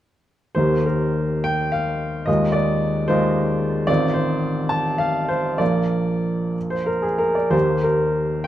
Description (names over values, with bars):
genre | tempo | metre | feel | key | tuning
classical, romantic character piece for solo piano | 59-76 BPM (dotted quarters) | 6/8 | rubato | Eb major | A4 = 436 Hz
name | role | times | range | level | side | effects
clear baby grand piano | solo | 0.5-8.5 s | A1 to A5 | -18 LUFS | equal | none
room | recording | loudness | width
light reverb | dark, warm production | -18 LUFS | side -12 dB against mid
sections
0.6-8.5 A section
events
none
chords
0.6 Eb; 2.3 Ab6/Eb; 3.9 F7/A; 5.6 Bb; 7.5 Eb